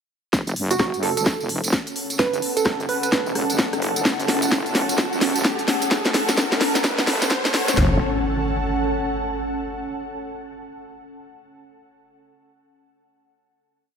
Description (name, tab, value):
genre	bass house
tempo	129 BPM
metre	4/4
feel	swing 62% on 16ths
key	F# minor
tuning	A4 = 440 Hz
part	wobble bass	bass	0.3-8.0 s	E1 to F#1	-27 LUFS	equal	chorus, tube saturation, sidechain pumping, high-pass filter
part	house drum kit	drums	0.3-7.9 s	kick drum, snare drum, toms	-24 LUFS	equal	high-pass filter on kick, high-pass filter on snare, high-pass filter on toms
part	house drum kit	drums	0.3-7.8 s	hi-hat, rim click, snare drum	-22 LUFS	left 1 dB	none
part	tambourine	percussion	0.3-7.8 s	none	-30 LUFS	right 4 dB	none
part	riser and impact	sound effects	1.9-9.6 s	none	-29 LUFS	equal	none
part	ethereal airy pad	texture	1.2-9.6 s	C#4 to A5	-26 LUFS	equal	ensemble chorus, built-in reverb, sidechain pumping
part	glassy wavetable pluck	melody	0.7-3.1 s	F#4 to B4	-25 LUFS	right 6 dB	chorus, dub echo
room	moderate lush hall reverb, RT60 1.9 s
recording	high-pass filter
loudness	-19 LUFS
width	side -6 dB against mid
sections	0.3-7.8 build; 7.8-9.6 final chord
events	build-up 0.3-7.8; drum fill 0.3-7.8; riser 1.9-7.8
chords	0.3 F#m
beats	| 0.33 0.80 1.26 1.73 | 2.19 2.66 3.12 3.59 | 4.05 4.52 4.98 5.45 | 5.91 6.38 6.84 7.31 | 7.77 8.24 8.70 9.17